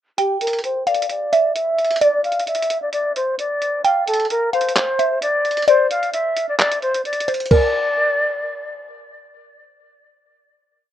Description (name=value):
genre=hip hop, trap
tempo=131 BPM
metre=4/4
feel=half-time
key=unclear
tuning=A4 = 440 Hz
part: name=breathy mellow silver concert flute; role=melody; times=0.2-8.8 s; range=G4 to F5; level=-19 LUFS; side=equal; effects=low-pass filter, plate reverb, tape echo
part: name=mallet-like synth pluck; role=second line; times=0.2-8.8 s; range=Bb4 to G5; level=-19 LUFS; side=equal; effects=chorus, phaser, plate reverb, tape echo
part: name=lo-fi sampler-style drum kit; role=drums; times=0.2-7.6 s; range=crash cymbal, handclaps, hi-hat, kick drum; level=-23 LUFS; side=right 1 dB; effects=none
room=moderate small room ambience, RT60 0.5 s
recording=rough home demo mix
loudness=-16 LUFS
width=side -11 dB against mid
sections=0.2-7.5 breakdown; 7.5-10.9 final chord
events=filter sweep on flute 0.2-7.5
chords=0.2 N.C.; 7.5 Bb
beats=| 0.18 0.64 1.10 1.55 | 2.01 2.47 2.93 3.39 | 3.85 4.30 4.76 5.22 | 5.68 6.14 6.59 7.05 | 7.51 7.97 8.43